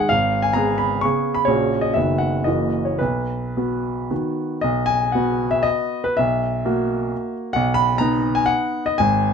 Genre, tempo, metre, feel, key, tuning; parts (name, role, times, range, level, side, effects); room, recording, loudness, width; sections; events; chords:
classical, romantic triple-time dance for piano with dotted rhythms; 105-146 BPM; 3/4; rubato; B major; A4 = 438 Hz
clear baby grand piano; solo; 0.0-9.3 s; F#1 to C#6; -18 LUFS; equal
moderate studio reverb, RT60 0.8 s; dark, warm production; -18 LUFS; side -6 dB against mid
0.0-4.6 A section; 4.6-9.3 B section
0.1 C#5/G#; 1.5 F#/A#; 2.0 B/F#; 2.5 F#7; 3.0 B; 4.6 B5; 6.2 F#7/B; 7.6 B